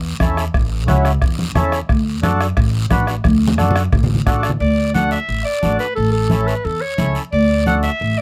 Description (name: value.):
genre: latin, cumbia.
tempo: 177 BPM.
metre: 4/4.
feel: straight.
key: D major.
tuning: A4 = 438 Hz.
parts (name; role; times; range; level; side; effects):
upright bass; bass; 0.0-8.1 s; A1 to F#2; -20 LUFS; equal; none.
mellow accordion; accompaniment; 0.2-7.9 s; C#4 to B4; -23 LUFS; equal; none.
bombo; percussion; 0.2-4.6 s; none; -22 LUFS; equal; none.
congas; percussion; 0.2-7.8 s; none; -23 LUFS; equal; none.
guiro; percussion; 0.2-8.2 s; none; -35 LUFS; equal; none.
warm clarinet; melody; 4.6-8.2 s; A4 to F#5; -22 LUFS; equal; none.
room: little or no reverb.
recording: close, detailed microphones.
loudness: -17 LUFS.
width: mono.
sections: 0.0-4.6 A section; 4.6-8.2 B section.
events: drum fill 3.3-4.6.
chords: 0.0 A; 1.9 D; 6.0 A; 7.3 D.